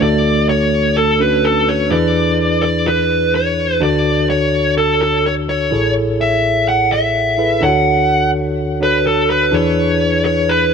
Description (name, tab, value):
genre	pop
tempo	126 BPM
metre	4/4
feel	straight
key	unclear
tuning	A4 = 444 Hz
part	dark smooth lead guitar	melody	0.0-10.7 s	A4 to F#5	-15 LUFS	equal	overdrive, ping-pong delay
part	bell-like tine electric piano	accompaniment	0.0-10.7 s	A1 to C#5	-16 LUFS	equal	fast stereo tremolo
room	light reverb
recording	none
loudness	-13 LUFS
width	side -6 dB against mid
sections	0.0-10.7 A section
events	none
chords	0.0 Dmaj7; 1.9 E7; 3.8 Dmaj7; 5.7 Amaj7; 7.6 Dmaj7; 9.5 E7